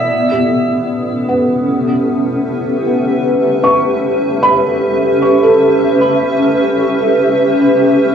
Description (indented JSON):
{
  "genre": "ambient",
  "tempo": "free time",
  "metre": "none",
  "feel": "none",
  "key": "A mixolydian",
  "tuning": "A4 = 444 Hz",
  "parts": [
    { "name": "granular cloud pad", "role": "sustained chords", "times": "0.0-8.1 s", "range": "B3 to F#5", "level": "-12 LUFS", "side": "equal", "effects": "built-in reverb, cassette tape, plate reverb" },
    { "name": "felt-muted upright piano", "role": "arpeggios", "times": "0.3-8.1 s", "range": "B3 to C#6", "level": "-17 LUFS", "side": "right 1 dB", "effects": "cassette tape, analog delay, plate reverb" }
  ],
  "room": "wet booth ambience, RT60 0.3 s",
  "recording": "home recording on cassette",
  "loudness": "-11 LUFS",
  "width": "side -8 dB against mid",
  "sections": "0.1-8.1 A section",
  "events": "none",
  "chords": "0.1 A7",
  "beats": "free time"
}